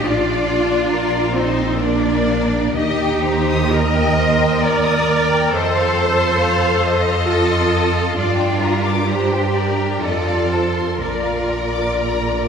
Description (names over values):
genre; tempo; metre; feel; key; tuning
classical, slow romantic movement for string orchestra; 61-70 BPM; 3/4; rubato; Bb major; A4 = 441 Hz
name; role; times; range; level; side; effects
warm symphonic violin section; melody; 0.0-12.4 s; Bb4 to Eb6; -25 LUFS; left 6 dB; none
clear symphonic violin section; second line; 0.0-12.5 s; A4 to F5; -24 LUFS; left 3 dB; none
rich symphonic viola section; accompaniment; 0.0-12.5 s; Bb3 to Bb4; -22 LUFS; equal; none
clear studio double bass section; bass; 0.0-12.5 s; Bb1 to G2; -21 LUFS; right 2 dB; none
clear symphonic cello section; bass; 0.0-12.5 s; D4 to Eb5; -20 LUFS; right 1 dB; none
room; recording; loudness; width
wet concert hall reverb, RT60 2.4 s; heard from further back in the room; -15 LUFS; side -6 dB against mid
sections
0.0-12.5 A section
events
none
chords
0.0 Bb; 2.8 Eb; 5.5 F7; 8.2 Gm; 10.0 F7; 11.0 Bb